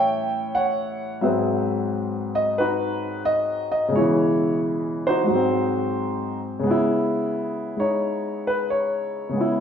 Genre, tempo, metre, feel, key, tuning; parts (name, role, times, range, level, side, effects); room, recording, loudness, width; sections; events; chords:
solo jazz; 88 BPM; 4/4; swing 67% on 8ths; C# minor; A4 = 440 Hz
warm grand piano; solo; 0.0-9.6 s; G#2 to G5; -21 LUFS; equal
wet large studio reverb, RT60 1.3 s; band playing live in one room; -21 LUFS; side -8 dB against mid
0.0-6.6 A section; 6.6-9.6 B section
grand piano solo 6.6-9.6
0.0 A7; 1.2 G#7#9; 3.9 C#m7; 5.3 G#7; 6.6 C#m7